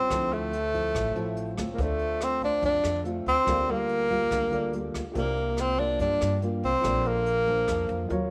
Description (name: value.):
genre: bossa nova.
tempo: 143 BPM.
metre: 4/4.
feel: straight.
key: unclear.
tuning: A4 = 440 Hz.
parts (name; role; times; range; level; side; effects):
breathy tenor saxophone; melody; 0.0-8.3 s; A3 to D4; -28 LUFS; equal; none.
nylon-string guitar; accompaniment; 0.0-8.3 s; A2 to C5; -36 LUFS; equal; none.
warm grand piano; accompaniment; 0.0-8.3 s; E#4 to E5; -41 LUFS; equal; none.
upright bass; bass; 0.1-8.3 s; A1 to G2; -35 LUFS; equal; none.
jazz brush drum kit; drums; 0.1-8.2 s; hi-hat, kick drum, rim click; -41 LUFS; equal; none.
room: light reverb, studio reverb.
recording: none.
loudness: -27 LUFS.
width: mono.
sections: 0.0-8.3 A section.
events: none.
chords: 0.1 Dm9; 1.8 Dm7; 3.5 Gm7/D; 5.2 C9sus4; 6.8 Bbmaj9.